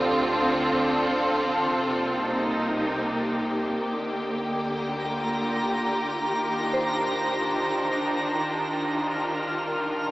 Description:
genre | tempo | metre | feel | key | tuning
ambient | 78 BPM | 3/4 | straight | C dorian | A4 = 440 Hz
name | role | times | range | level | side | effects
rich studio string section | sustained chords | 0.0-10.1 s | C3 to Bb4 | -24 LUFS | equal | none
soft synth bell | arpeggios | 0.0-3.2, 6.7-10.1 s | C4 to C5 | -34 LUFS | right 1 dB | none
warm sub bass | bass | 0.0-10.1 s | C2 to Eb2 | -48 LUFS | equal | tube saturation
twinkling granular texture | texture | 4.7-10.1 s | Bb5 to F6 | -29 LUFS | right 1 dB | built-in reverb
room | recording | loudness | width
wet shimmer reverb, RT60 8.7 s | small speaker sound | -23 LUFS | side -18 dB against mid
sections
0.0-8.7 A section; 8.7-10.1 B section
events
fade-out on sub bass 0.0-8.7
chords
0.0 Dm7; 1.7 Cm7; 4.0 Gm7/D; 6.4 Ebmaj9; 8.7 Cm11

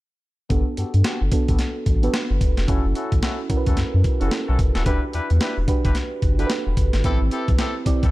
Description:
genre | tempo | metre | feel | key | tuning
R&B, new jack swing | 110 BPM | 4/4 | swing 61% on 16ths | unclear | A4 = 440 Hz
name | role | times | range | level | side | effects
mellow FM electric piano | accompaniment | 0.5-8.1 s | B3 to D5 | -27 LUFS | right 4 dB | chorus, low-pass filter
clear horn section | stabs | 0.5-8.1 s | B3 to B4 | -31 LUFS | left 3 dB | low-pass filter
round analog bass | bass | 0.5-8.1 s | D#1 to G2 | -20 LUFS | equal | none
breakbeat sampler-style drum kit | drums | 0.5-8.1 s | hi-hat, kick drum, snare drum | -22 LUFS | equal | none
room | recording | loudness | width
digital ambience | none | -18 LUFS | side -18 dB against mid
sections
0.5-8.1 A section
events
filter sweep 0.5-8.1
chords
0.5 Gmaj9; 2.7 F#m7; 4.9 Em7; 7.0 Am7

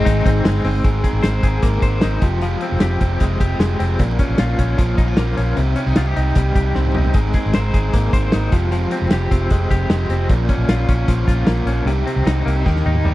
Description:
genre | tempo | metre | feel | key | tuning
jangly indie pop | 152 BPM | 4/4 | straight | Ab major | A4 = 442 Hz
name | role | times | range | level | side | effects
raw garage guitar | accompaniment | 0.0-13.1 s | F2 to Bb4 | -25 LUFS | right 5 dB | overdrive
direct-recorded clean electric guitar | arpeggios | 0.0-13.1 s | Ab2 to C5 | -23 LUFS | left 4 dB | tremolo
vintage muted fingered electric bass | bass | 0.0-13.1 s | F1 to Eb2 | -19 LUFS | equal | none
loose indie drum kit | drums | 0.1-13.1 s | hi-hat, kick drum, snare drum, toms | -18 LUFS | equal | none
room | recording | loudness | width
studio reverb | dry, close 1970s-style studio recording, vinyl crackle | -15 LUFS | side -16 dB against mid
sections
0.8-13.1 A section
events
drum fill 6.8-7.1, 12.7-13.1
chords
0.0 Ab; 0.8 Abadd9; 2.2 Fmadd9; 4.0 Bbm; 5.6 Cm; 7.1 Abadd9; 8.5 Fmadd9; 10.3 Bbm; 11.9 Cm

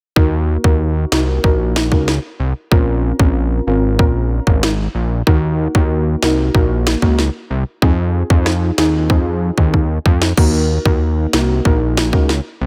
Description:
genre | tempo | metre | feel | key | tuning
dancehall | 94 BPM | 4/4 | straight | Eb dorian | A4 = 443 Hz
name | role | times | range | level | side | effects
deep mellow chord stab | accompaniment | 0.2-12.3 s | Bb3 to Bb4 | -22 LUFS | equal | chorus, sidechain pumping
fat analog bass | bass | 0.2-12.7 s | Ab1 to F2 | -19 LUFS | equal | none
island pop drum kit | drums | 0.2-12.4 s | crash cymbal, kick drum, rim click, snare drum | -17 LUFS | equal | overdrive
room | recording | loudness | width
little or no reverb | none | -15 LUFS | mono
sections
0.2-12.7 A section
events
drum fill 9.7-10.4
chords
0.2 Ebm; 2.7 Bbmadd9; 5.3 Ebm; 7.8 Fm7; 10.4 Ebm

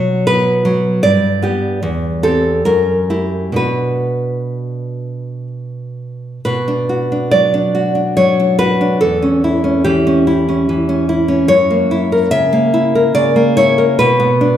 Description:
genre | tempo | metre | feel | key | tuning
romantic piece for solo classical guitar | 61-79 BPM | 3/4 | rubato | B minor | A4 = 439 Hz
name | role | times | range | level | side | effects
nylon-string guitar | solo | 0.0-14.6 s | E2 to E5 | -12 LUFS | equal | none
room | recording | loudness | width
wet recital hall reverb, RT60 1.3 s | recorded in a church or concert hall | -12 LUFS | side -10 dB against mid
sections
0.0-6.5 A section; 6.5-14.6 B section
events
none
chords
0.0 B5; 1.0 G; 1.8 C/E; 2.7 F#7b9; 3.6 Bm; 9.0 C#dim/E; 11.5 F#7; 14.0 Bm

